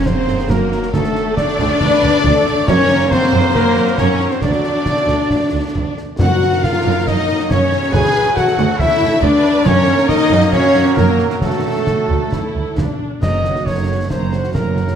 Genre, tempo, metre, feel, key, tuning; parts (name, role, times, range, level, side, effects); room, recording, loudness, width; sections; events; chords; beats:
cinematic, heroic adventure film score; 137 BPM; 4/4; straight; A4 = 439 Hz
clear symphonic violin section; melody; 0.0-15.0 s; A4 to Bb5; -26 LUFS; left 5 dB
mellow hollow silver concert flute; second line; 0.0-15.0 s; A4 to Ab5; -24 LUFS; left 1 dB
rich symphonic violin section; second line; 0.0-15.0 s; A4 to Ab5; -26 LUFS; left 2 dB
warm symphonic viola section; accompaniment; 0.0-15.0 s; Db4 to Db5; -25 LUFS; right 1 dB
clear trombone section; sustained chords; 0.0-15.0 s; Gb2 to Bb3; -26 LUFS; right 5 dB
mellow French horn section; sustained chords; 0.0-15.0 s; A3 to Ab4; -20 LUFS; left 4 dB
warm trumpet; stabs; 0.0-15.0 s; A4 to Ab5; -22 LUFS; right 2 dB
rich symphonic cello section; bass; 0.0-14.9 s; Gb2 to Ab4; -22 LUFS; right 1 dB
clear symphonic double bass section; bass; 0.1-14.9 s; Gb1 to Gb2; -20 LUFS; right 4 dB
concert snare drum, concert bass drum and clash cymbals; drums; 0.1-15.0 s; -22 LUFS; equal
timpani; percussion; 2.7-3.3, 6.2-6.8, 13.2-13.8 s; Gb2; -21 LUFS; equal
moderate scoring stage reverb, RT60 1.7 s; -13 LUFS; side -8 dB against mid
0.0-13.2 A section; 13.2-15.0 B section
0.0 Gb; 0.9 D; 2.7 Gb; 4.4 D; 6.2 Gb; 7.9 D; 9.7 Gb; 11.4 D; 13.2 Gb
0.06 0.50 | 0.94 1.38 1.81 2.25 | 2.68 3.11 3.55 3.98 | 4.42 4.87 5.31 5.75 | 6.20 6.63 7.07 7.50 | 7.94 8.37 8.80 9.23 | 9.66 10.09 10.52 10.96 | 11.41 11.87 12.32 12.77 | 13.22 13.66 14.10 14.54